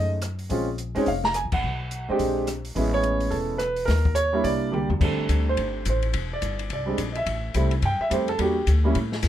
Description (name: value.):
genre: jazz piano trio.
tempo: 213 BPM.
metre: 4/4.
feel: swing 61% on 8ths.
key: F major from 5.0 s.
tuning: A4 = 442 Hz.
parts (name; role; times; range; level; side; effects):
warm baby grand piano; melody; 0.0-9.0 s; G3 to Bb5; -25 LUFS; right 2 dB; none.
upright bass; bass; 0.0-9.3 s; E1 to A2; -26 LUFS; left 1 dB; none.
open jazz drum kit; drums; 0.2-9.3 s; crash cymbal, hi-hat, kick drum, ride cymbal, rim click, snare drum, toms; -31 LUFS; left 2 dB; none.
room: light reverb.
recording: minimal, uncompressed stereo recording.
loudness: -22 LUFS.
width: side -11 dB against mid.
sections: 0.0-5.0 A section; 5.0-9.3 B section.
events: band accent 1.5; drum fill 4.7; grand piano solo 5.0-9.3.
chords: 0.0 Cb13 (rootless); 0.5 Bbm7; 1.6 Cb5; 2.2 Bb13; 2.8 Amaj9; 3.9 Eb5; 4.4 C9; 5.0 F69; 6.1 Em7b13; 7.3 Am7; 8.4 Em7b5.